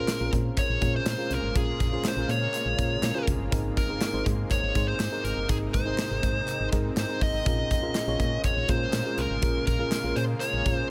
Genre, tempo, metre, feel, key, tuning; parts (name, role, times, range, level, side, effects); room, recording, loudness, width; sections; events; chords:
1980s-style pop; 122 BPM; 4/4; straight; A4 = 440 Hz
dark smooth lead guitar; melody; 0.0-10.9 s; Ab4 to Eb5; -32 LUFS; equal; overdrive, tape echo
FM electric piano; accompaniment; 0.0-10.9 s; Ab2 to Db5; -34 LUFS; equal; chorus
shimmering ambient pad; sustained chords; 0.5-10.9 s; C3 to F4; -40 LUFS; equal; chorus, built-in reverb
solid FM bass; bass; 0.0-10.8 s; G1 to Bb2; -33 LUFS; equal
modern studio drum kit; drums; 0.1-10.8 s; hi-hat, kick drum, snare drum, tambourine; -31 LUFS; equal
group handclap; percussion; 0.1-10.5 s; -46 LUFS; equal
light reverb, studio reverb; -27 LUFS; mono
0.0-10.9 A section
0.0 Bbm7; 3.5 Abadd9; 7.5 Bbm7